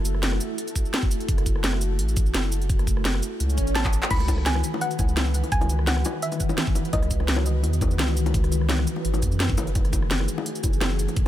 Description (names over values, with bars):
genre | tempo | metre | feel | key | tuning
liquid drum and bass | 170 BPM | 4/4 | swing 54% on 16ths | F# dorian | A4 = 439 Hz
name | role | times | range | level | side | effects
glassy FM pad | sustained chords | 0.0-11.3 s | D#3 to B4 | -30 LUFS | left 1 dB | ensemble chorus, built-in reverb, sidechain pumping
warm sub bass | bass | 0.0-11.3 s | F#1 to F#2 | -24 LUFS | equal | none
drum and bass drum kit | drums | 0.1-11.3 s | crash cymbal, handclaps, hi-hat, rim click, shaker, snare drum | -28 LUFS | equal | none
electronic kick drum | drums | 0.8-11.2 s | none | -24 LUFS | equal | none
swell | sound effects | 3.5-4.1 s | none | -34 LUFS | right 1 dB | none
soft round pluck | melody | 3.8-7.9 s | D#5 to B5 | -31 LUFS | equal | chorus, digital delay
bongos | percussion | 4.1-11.2 s | none | -33 LUFS | left 6 dB | none
room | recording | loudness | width
little or no reverb | none | -21 LUFS | side -13 dB against mid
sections
0.0-11.3 A section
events
swell 3.5-4.1; drum fill 3.8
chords
0.0 F#m7; 4.1 C#m11; 9.6 F#m9